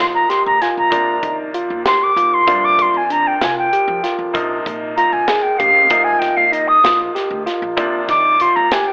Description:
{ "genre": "progressive instrumental, band music in an uneven meter", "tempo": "193 BPM (eighths)", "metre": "11/8", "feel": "straight", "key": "Eb major", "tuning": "A4 = 440 Hz", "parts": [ { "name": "silver concert flute", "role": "melody", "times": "0.0-8.9 s", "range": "Eb5 to Eb6", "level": "-13 LUFS", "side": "equal", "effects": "slapback echo" }, { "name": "bright grand piano", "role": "accompaniment", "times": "0.0-8.9 s", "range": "C3 to Eb4", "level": "-24 LUFS", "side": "equal", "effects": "none" }, { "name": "bright tine electric piano", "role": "arpeggios", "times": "0.0-8.9 s", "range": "D4 to Ab4", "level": "-21 LUFS", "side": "equal", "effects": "none" }, { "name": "upright bass", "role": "bass", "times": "0.0-8.8 s", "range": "F1 to F3", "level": "-33 LUFS", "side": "equal", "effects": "none" }, { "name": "big rock drum kit", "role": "drums", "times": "0.3-8.9 s", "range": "hi-hat, kick drum, snare drum", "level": "-23 LUFS", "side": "equal", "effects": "none" } ], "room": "light reverb, small room ambience", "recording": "telephone sound", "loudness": "-13 LUFS", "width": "side -30 dB against mid", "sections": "0.0-8.9 A section", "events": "flute solo 0.0-8.9", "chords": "0.0 F5; 0.9 Ebmaj7; 2.5 Gm7; 4.3 Bb9sus4; 5.9 F5; 7.8 Ebmaj7" }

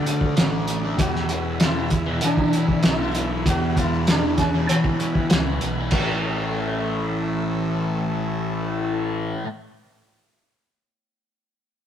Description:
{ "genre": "psychedelic rock", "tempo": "97 BPM", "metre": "4/4", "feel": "straight", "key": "A major", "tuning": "A4 = 439 Hz", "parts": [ { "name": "sitar", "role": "melody", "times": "0.0-9.3 s", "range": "A3 to A4", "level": "-28 LUFS", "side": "right 1 dB", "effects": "digital delay" }, { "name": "tonewheel organ", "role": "sustained chords", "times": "0.0-9.2 s", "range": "A4 to F#6", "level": "-36 LUFS", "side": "right 1 dB", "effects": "chorus vibrato, fast rotary speaker" }, { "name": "fuzz guitar", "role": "riff", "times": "0.0-9.5 s", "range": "E2 to D4", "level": "-25 LUFS", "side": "left 1 dB", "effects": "distortion, phaser" }, { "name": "fuzz fingered electric bass", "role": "bass", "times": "0.0-9.3 s", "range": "A1 to E3", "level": "-26 LUFS", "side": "equal", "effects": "overdrive" }, { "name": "cloth-damped thuddy drum kit", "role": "drums", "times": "0.1-6.1 s", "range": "crash cymbal, hi-hat, kick drum, snare drum", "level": "-22 LUFS", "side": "equal", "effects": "none" } ], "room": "light reverb", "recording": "rough rehearsal-room recording, tube saturation", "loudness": "-20 LUFS", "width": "side -9 dB against mid", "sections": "0.0-5.9 A section; 5.9-8.4 B section", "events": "none", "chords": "0.0 D; 1.0 E; 5.9 A" }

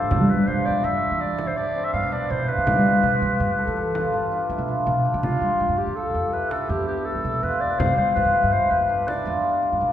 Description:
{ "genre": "contemporary instrumental, chamber music in an uneven meter", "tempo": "164 BPM", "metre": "7/4", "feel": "straight", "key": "G mixolydian", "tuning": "A4 = 442 Hz", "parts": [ { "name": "growling clarinet", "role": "melody", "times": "0.0-9.6 s", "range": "F4 to F5", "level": "-26 LUFS", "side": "right 1 dB", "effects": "none" }, { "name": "cimbalom", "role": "arpeggios", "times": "0.0-9.9 s", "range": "B3 to A4", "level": "-23 LUFS", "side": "left 1 dB", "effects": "none" }, { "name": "upright bass", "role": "bass", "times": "0.0-9.9 s", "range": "F2 to G3", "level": "-25 LUFS", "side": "right 1 dB", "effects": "none" }, { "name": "frame drum", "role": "percussion", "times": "0.1-9.7 s", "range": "none", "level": "-32 LUFS", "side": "right 1 dB", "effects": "none" } ], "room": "wet concert hall reverb, RT60 2.1 s", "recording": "heard from further back in the room", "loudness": "-20 LUFS", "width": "side -11 dB against mid", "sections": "0.0-5.2 A section; 5.2-9.9 B section", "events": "none", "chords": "0.1 G6; 2.7 G7" }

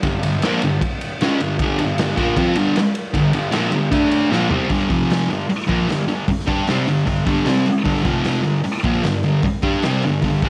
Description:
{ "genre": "garage rock duo or trio", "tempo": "153 BPM", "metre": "4/4", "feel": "straight", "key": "unclear", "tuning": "A4 = 440 Hz", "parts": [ { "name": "thick fuzz guitar", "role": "riff", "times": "0.0-10.5 s", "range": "F2 to G4", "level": "-20 LUFS", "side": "equal", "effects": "distortion" }, { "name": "raw garage drum kit", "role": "drums", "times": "0.0-10.5 s", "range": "hi-hat, kick drum, ride cymbal, snare drum, toms", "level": "-25 LUFS", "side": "equal", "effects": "none" } ], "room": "light reverb, small room ambience", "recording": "none", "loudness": "-19 LUFS", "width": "mono", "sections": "0.0-4.7 A section; 4.7-10.5 B section", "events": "drum fill 4.3-4.7", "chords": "0.0 G5; 3.9 D5; 4.3 Bbsus2; 4.7 G5; 4.9 F5; 5.3 G5; 8.1 F5; 8.4 G5" }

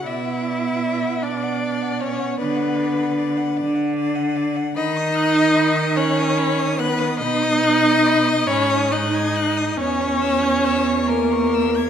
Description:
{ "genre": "classical, slow romantic movement for string quartet", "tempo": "43-52 BPM (dotted quarters)", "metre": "6/8", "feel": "rubato", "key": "B minor, B major from 4.8 s", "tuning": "A4 = 440 Hz", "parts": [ { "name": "warm violin", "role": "melody", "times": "0.0-11.9 s", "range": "D5 to G#6", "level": "-29 LUFS", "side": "left 9 dB", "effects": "none" }, { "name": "rich violin", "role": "second line", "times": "0.0-11.9 s", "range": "A#4 to E5", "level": "-23 LUFS", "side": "left 4 dB", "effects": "none" }, { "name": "warm viola", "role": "accompaniment", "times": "0.0-11.9 s", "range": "A#3 to E4", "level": "-22 LUFS", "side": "right 1 dB", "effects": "none" }, { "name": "clear cello", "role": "bass", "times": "0.1-11.9 s", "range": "E2 to D#3", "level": "-22 LUFS", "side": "right 3 dB", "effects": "none" } ], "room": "wet scoring stage reverb, RT60 1.6 s", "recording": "none", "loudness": "-17 LUFS", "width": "side -8 dB against mid", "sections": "0.0-11.9 A section", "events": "none", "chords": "0.0 Bm; 2.4 Bm/D; 4.8 B/D#; 7.2 B; 8.5 G#7(no3); 9.8 C#m/E" }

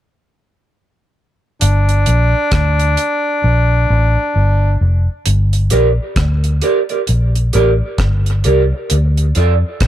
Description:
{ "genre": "dub reggae", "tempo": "66 BPM", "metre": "4/4", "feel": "swing 61% on 16ths", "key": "G minor", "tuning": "A4 = 440 Hz", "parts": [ { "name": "warm tenor saxophone", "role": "second line", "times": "1.6-4.8 s", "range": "D4", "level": "-17 LUFS", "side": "left 1 dB", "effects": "tape echo" }, { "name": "vintage muted fingered electric bass", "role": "bass", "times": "1.6-9.9 s", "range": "F1 to F2", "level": "-13 LUFS", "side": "equal", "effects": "none" }, { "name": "deep reggae drum kit", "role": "drums", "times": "1.6-9.9 s", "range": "hi-hat, kick drum, rim click", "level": "-19 LUFS", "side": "equal", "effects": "none" }, { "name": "mellow electric guitar", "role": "accompaniment", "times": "5.7-9.5 s", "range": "F4 to D5", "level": "-17 LUFS", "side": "right 3 dB", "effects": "lush chorus, high-pass filter, tape echo" } ], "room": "small room ambience", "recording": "none", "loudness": "-12 LUFS", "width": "side -12 dB against mid", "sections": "1.6-5.2 A section; 5.2-9.9 B section", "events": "drums muted 3.4-5.2; filter sweep on clean electric guitar 5.2-9.9", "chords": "1.6 Gm; 8.9 Dm" }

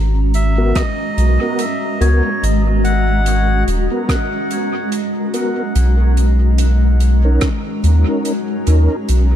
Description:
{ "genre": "ambient dub", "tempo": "72 BPM", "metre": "4/4", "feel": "swing 57% on 16ths", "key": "G# minor", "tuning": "A4 = 440 Hz", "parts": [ { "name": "granular cloud pad", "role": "sustained chords", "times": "0.0-9.4 s", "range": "G#3 to A#5", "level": "-21 LUFS", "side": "equal", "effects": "built-in reverb" }, { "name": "soft dub sub bass", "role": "bass", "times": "0.0-9.4 s", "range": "D#1 to D#2", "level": "-13 LUFS", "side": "equal", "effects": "none" }, { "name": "melodica", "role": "melody", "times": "0.3-3.6 s", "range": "C#5 to F#5", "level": "-24 LUFS", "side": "equal", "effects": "dub echo" }, { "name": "soft-mallet drum kit", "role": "drums", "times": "0.3-9.3 s", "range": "hi-hat, rim click", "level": "-29 LUFS", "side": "right 2 dB", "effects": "dub echo" }, { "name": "mellow tonewheel organ", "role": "stabs", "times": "0.6-9.0 s", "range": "B3 to A#4", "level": "-23 LUFS", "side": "equal", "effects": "chorus vibrato, slow rotary speaker, dub echo" }, { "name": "electronic kick drum", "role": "drums", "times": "0.8-7.6 s", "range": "none", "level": "-18 LUFS", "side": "equal", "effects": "none" } ], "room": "studio reverb", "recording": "none", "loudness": "-13 LUFS", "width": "side -11 dB against mid", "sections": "0.0-9.4 A section", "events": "none", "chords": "0.0 G#m9; 5.8 Bmaj9" }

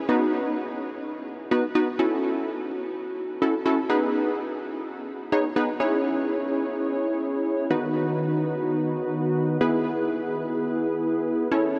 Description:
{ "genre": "pop", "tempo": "126 BPM", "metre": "4/4", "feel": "straight", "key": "C# minor", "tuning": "A4 = 437 Hz", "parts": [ { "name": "funky polysynth comp", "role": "solo", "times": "0.1-11.8 s", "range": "D#3 to C#5", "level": "-26 LUFS", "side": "equal", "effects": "chorus, diffuse ambient delay" } ], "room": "wet huge ambient reverb, RT60 7.8 s", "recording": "dreamy mix soaked in reverb", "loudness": "-26 LUFS", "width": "mono", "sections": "0.0-5.8 A section; 5.8-11.8 B section", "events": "none", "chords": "0.1 B; 2.0 F#m7; 3.9 G#m; 5.8 C#m; 7.7 B/D#; 9.6 E" }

